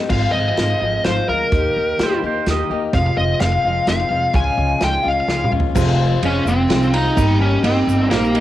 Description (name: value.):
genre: folk rock and heartland rock.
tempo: 127 BPM.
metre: 3/4.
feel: straight.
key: F minor.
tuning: A4 = 440 Hz.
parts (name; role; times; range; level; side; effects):
picked steel-string acoustic guitar; accompaniment; 0.0-8.4 s; F2 to G4; -22 LUFS; left 6 dB; cassette tape.
smooth overdriven lead guitar; melody; 0.1-8.4 s; Bb3 to Ab5; -19 LUFS; right 1 dB; cassette tape, analog delay.
upright bass; bass; 0.1-8.4 s; F1 to Eb2; -20 LUFS; right 1 dB; none.
unplugged drum kit; drums; 0.1-8.4 s; crash cymbal, hi-hat, kick drum, ride cymbal, snare drum, toms; -23 LUFS; right 1 dB; cassette tape.
pedal steel guitar; second line; 2.0-2.8 s; C5 to Eb5; -25 LUFS; right 7 dB; cassette tape.
dark upright piano; accompaniment; 5.7-8.4 s; Eb4 to F5; -27 LUFS; right 10 dB; cassette tape.
egg shaker; percussion; 5.8-8.3 s; none; -38 LUFS; right 11 dB; none.
room: light reverb, small room ambience.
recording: home recording on cassette.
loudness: -15 LUFS.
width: side -13 dB against mid.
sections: 0.1-5.8 A section; 5.8-8.4 B section.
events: drum fill 5.3-5.8.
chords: 0.1 Ab6; 1.5 Eb; 2.9 Fm; 4.3 Db; 5.8 Fm; 7.2 Eb/G.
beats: | 0.10 0.57 1.05 | 1.52 1.99 2.46 | 2.93 3.40 3.88 | 4.35 4.82 5.29 | 5.76 6.23 6.70 | 7.17 7.64 8.11.